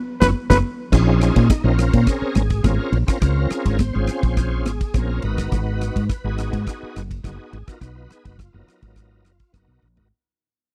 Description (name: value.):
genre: electric jazz fusion.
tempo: 104 BPM.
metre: 4/4.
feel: straight.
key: Bb phrygian.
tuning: A4 = 440 Hz.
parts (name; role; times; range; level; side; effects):
growling trumpet; melody; 0.2-0.6 s; Cb5; -24 LUFS; equal; none.
bright tonewheel organ; accompaniment; 0.2-10.1 s; Gb3 to C5; -28 LUFS; equal; slow rotary speaker, overdrive, chorus vibrato.
woody fretless electric bass; bass; 0.2-10.1 s; Gb1 to Bb2; -22 LUFS; equal; none.
damped 70s drum kit; drums; 0.2-10.1 s; crash cymbal, kick drum, ride cymbal, rim click, snare drum, toms; -24 LUFS; equal; none.
congas; percussion; 0.2-5.1 s; none; -29 LUFS; equal; none.
room: studio ambience.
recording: dry, close 1970s-style studio recording.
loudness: -20 LUFS.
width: mono.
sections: 0.9-10.1 A section.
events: band accent 0.0-0.9; drum fill 0.5-0.9, 9.8; fade-out 0.9-10.1.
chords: 0.0 Gb7(no3); 0.9 Bbm9; 5.2 Abm9.